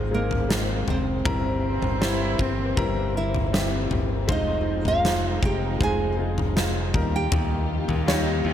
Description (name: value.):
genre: pop ballad.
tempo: 79 BPM.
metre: 4/4.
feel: straight.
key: unclear.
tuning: A4 = 443 Hz.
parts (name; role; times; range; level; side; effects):
clear concert grand piano; accompaniment; 0.0-8.5 s; G2 to Db5; -30 LUFS; left 2 dB; none.
dark studio string section; sustained chords; 0.0-8.5 s; Eb3 to G4; -32 LUFS; left 3 dB; none.
modern bright fingered electric bass; bass; 0.0-8.5 s; F1 to Eb2; -27 LUFS; equal; none.
nylon-string guitar; melody; 0.1-8.5 s; Bb3 to Ab5; -29 LUFS; right 2 dB; ping-pong delay.
huge arena drum kit; drums; 0.3-8.3 s; kick drum, snare drum, toms; -26 LUFS; left 1 dB; none.
dark studio cello section; second line; 1.6-3.0, 8.1-8.5 s; C4 to F4; -30 LUFS; right 4 dB; none.
room: light reverb, small room reverb.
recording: none.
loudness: -21 LUFS.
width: side -10 dB against mid.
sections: 0.0-8.5 A section.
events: none.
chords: 0.0 Abadd9; 1.2 C7/G; 4.3 Fm7; 6.9 Ebadd9.